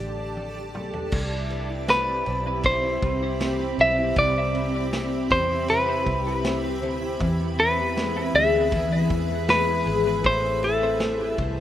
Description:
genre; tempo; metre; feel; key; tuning
dream pop; 79 BPM; 4/4; straight; C major; A4 = 441 Hz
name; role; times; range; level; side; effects
granular cloud pad; sustained chords; 0.0-11.6 s; C4 to D6; -30 LUFS; right 1 dB; built-in reverb
fingerpicked twelve-string acoustic guitar; arpeggios; 0.0-11.6 s; A2 to B4; -28 LUFS; left 3 dB; wide subtle chorus, digital delay
vintage muted fingered electric bass; bass; 0.0-11.6 s; G#1 to E2; -30 LUFS; equal; none
vintage drum kit; drums; 0.4-11.6 s; crash cymbal, kick drum, ride cymbal, snare drum, tambourine, toms; -33 LUFS; equal; none
semi-hollow electric guitar; melody; 1.9-11.4 s; A4 to E5; -22 LUFS; equal; digital delay
room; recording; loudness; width
light reverb, small room ambience; rough home demo mix; -21 LUFS; side -12 dB against mid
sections
0.0-1.1 A section; 1.1-11.6 B section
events
drum fill 0.4-1.1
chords
0.0 Dsus4; 1.1 Cmaj7; 7.2 E; 10.2 Am7

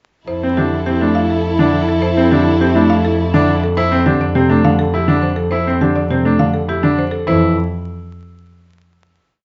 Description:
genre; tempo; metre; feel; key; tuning
classical, minimalist pattern music; 103 BPM; 3/4; straight; F major; A4 = 439 Hz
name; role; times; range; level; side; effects
buzzing marimba with hard mallets; melody; 0.3-7.5 s; G4 to F5; -25 LUFS; equal; none
clear French horn; second line; 0.3-3.5 s; E4; -21 LUFS; equal; none
rich studio violin section; sustained chords; 0.3-3.6 s; E4 to A4; -27 LUFS; equal; none
warm double bass; bass; 0.3-7.5 s; F2; -22 LUFS; equal; none
bright grand piano; arpeggios; 0.4-7.5 s; C4 to E4; -20 LUFS; equal; none
dark concert grand piano; accompaniment; 0.6-7.5 s; C3 to A3; -20 LUFS; equal; none
room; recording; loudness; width
moderate large studio reverb, RT60 0.9 s; heard from further back in the room, vinyl crackle, nothing above 7.7 kHz; -15 LUFS; mono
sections
0.3-7.3 A section; 7.3-9.0 final chord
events
none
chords
0.3 Fmaj9; 7.3 F5

